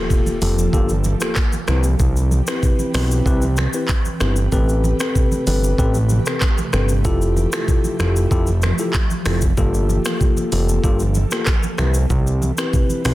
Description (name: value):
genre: afrobeats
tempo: 95 BPM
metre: 4/4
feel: straight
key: C major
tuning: A4 = 439 Hz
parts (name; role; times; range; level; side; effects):
- mellow tine electric piano; accompaniment; 0.0-13.1 s; Bb3 to B4; -23 LUFS; left 2 dB; none
- ethereal airy pad; sustained chords; 0.0-13.1 s; C3 to E5; -29 LUFS; right 2 dB; ensemble chorus, built-in reverb, sidechain pumping
- impact; sound effects; 0.0-2.0 s; none; -35 LUFS; right 1 dB; none
- afro-pop drum kit; drums; 0.1-13.1 s; finger snaps, handclaps, hi-hat, kick drum, rim click, shaker; -20 LUFS; equal; soft clipping on snare
- congas; percussion; 0.1-13.1 s; none; -28 LUFS; right 3 dB; none
- fat analog bass; bass; 0.4-13.1 s; F1 to C2; -18 LUFS; equal; none
room: digital ambience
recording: dense, heavily limited modern master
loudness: -16 LUFS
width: side -16 dB against mid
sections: 0.0-13.1 A section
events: impact 0.0-2.0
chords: 0.0 Gm9; 1.7 Cmaj7; 4.5 Am9; 7.0 Fmaj9; 9.6 Gm9; 11.8 Cmaj7